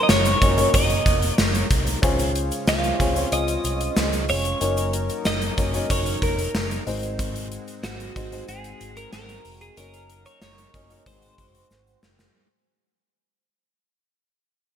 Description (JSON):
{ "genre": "1980s-style pop", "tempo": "93 BPM", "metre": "4/4", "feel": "straight", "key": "unclear", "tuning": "A4 = 437 Hz", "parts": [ { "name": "twelve-string electric guitar", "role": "melody", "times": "0.0-12.0 s", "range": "Gb4 to F5", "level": "-26 LUFS", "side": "right 1 dB", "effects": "wide subtle chorus, ping-pong delay" }, { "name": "dark baby grand piano", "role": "accompaniment", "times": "0.0-12.4 s", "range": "Ab2 to Eb5", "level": "-29 LUFS", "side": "left 3 dB", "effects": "none" }, { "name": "chorused pulse-width pad", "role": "sustained chords", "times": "0.0-12.3 s", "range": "Gb3 to Bb4", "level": "-32 LUFS", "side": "equal", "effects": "none" }, { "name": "vintage muted fingered electric bass", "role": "bass", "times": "0.1-12.3 s", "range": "F1 to Db2", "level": "-27 LUFS", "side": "equal", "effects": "none" }, { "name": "gated 80s drum kit", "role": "drums", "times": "0.1-12.3 s", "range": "hi-hat, kick drum, snare drum, tambourine", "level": "-23 LUFS", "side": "equal", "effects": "gated reverb" }, { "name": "egg shaker", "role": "percussion", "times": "0.1-12.3 s", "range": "none", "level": "-38 LUFS", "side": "right 4 dB", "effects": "none" } ], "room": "moderate lush hall reverb, RT60 2.3 s", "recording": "bright 1980s-style digital production", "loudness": "-20 LUFS", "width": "side -9 dB against mid", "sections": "0.0-12.4 A section", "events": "fade-out 0.0-12.4; drum fill 11.7-12.4", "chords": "0.0 Gb6; 2.0 Dbmaj7; 4.6 Gb6; 6.9 Ab7; 9.8 Gb6; 11.1 Ab7", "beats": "0.10 0.74 1.39 | 2.03 2.67 3.32 3.97 | 4.61 5.26 5.90 6.55 | 7.19 7.84 8.48 9.13 | 9.77 10.42 11.06 11.71" }